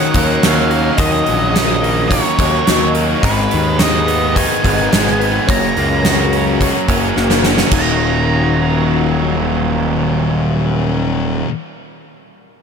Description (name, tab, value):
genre	rock, shoegaze and dream pop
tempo	107 BPM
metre	4/4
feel	straight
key	Eb minor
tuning	A4 = 440 Hz
part	octave-fuzz lead guitar	melody	0.0-10.7 s	Cb5 to Bb5	-21 LUFS	right 2 dB	distortion, analog delay
part	sweeping resonant pad	sustained chords	0.0-10.7 s	Eb3 to Eb5	-25 LUFS	equal	chorus
part	mellow electric guitar	arpeggios	0.0-8.5 s	Eb4 to Eb5	-24 LUFS	left 11 dB	wide subtle chorus, analog delay
part	overdriven semi-hollow guitar	riff	0.0-11.5 s	Eb2 to Gb4	-20 LUFS	right 12 dB	reverse reverb
part	thick fuzz guitar	riff	0.0-11.5 s	Eb2 to Gb4	-20 LUFS	left 12 dB	distortion, lush chorus
part	fuzz picked electric bass	bass	0.1-11.4 s	Eb1 to Eb2	-18 LUFS	equal	overdrive
part	gated 80s drum kit	drums	0.1-7.9 s	crash cymbal, hi-hat, kick drum, snare drum	-17 LUFS	right 1 dB	none
room	light reverb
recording	none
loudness	-12 LUFS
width	side -6 dB against mid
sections	0.0-7.7 A section; 7.7-10.0 B section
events	drum fill 7.2-7.7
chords	0.0 Ebm7; 3.2 Abm; 5.5 Gb; 7.7 Ebm7